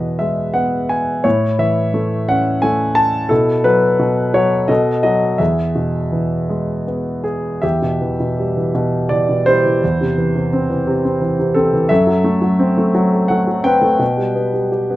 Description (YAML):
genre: classical, lyrical solo piano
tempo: 78-89 BPM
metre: 3/4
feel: rubato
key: E major, E minor from 7.6 s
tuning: A4 = 440 Hz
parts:
  - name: warm concert grand piano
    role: solo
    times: 0.0-15.0 s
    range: E2 to A5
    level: -14 LUFS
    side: equal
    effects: none
room: light reverb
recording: none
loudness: -14 LUFS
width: side -16 dB against mid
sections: 0.0-7.6 A section; 7.6-15.0 B section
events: none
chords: 0.0 E; 1.2 A; 3.3 Bsus4; 4.7 B7; 5.4 E; 7.6 Em; 9.8 Am/E; 11.9 F#dim; 14.0 G/B